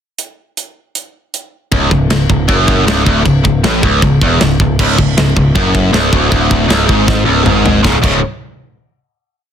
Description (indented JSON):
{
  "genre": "heavy metal",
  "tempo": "157 BPM",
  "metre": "4/4",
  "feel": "straight",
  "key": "C# minor",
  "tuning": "A4 = 440 Hz",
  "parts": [
    { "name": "tight metal drum kit", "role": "drums", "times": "0.2-8.1 s", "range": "china cymbal, crash cymbal, hi-hat, kick drum, snare drum, toms", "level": "-14 LUFS", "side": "equal", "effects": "none" },
    { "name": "tight distorted guitar", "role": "riff", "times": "1.7-8.2 s", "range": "C#2 to C#3", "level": "-12 LUFS", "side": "equal", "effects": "distortion" },
    { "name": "growling picked electric bass", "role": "bass", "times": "1.7-8.2 s", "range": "C#1 to A1", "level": "-16 LUFS", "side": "equal", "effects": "overdrive" }
  ],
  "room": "little or no reverb",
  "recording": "dense, heavily limited modern master",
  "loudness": "-9 LUFS",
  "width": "side -8 dB against mid",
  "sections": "0.2-1.7 pickup bar; 1.7-7.8 riff; 7.8-9.4 final chord",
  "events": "drum fill 7.1-7.8",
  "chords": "0.2 N.C.; 1.7 C#5"
}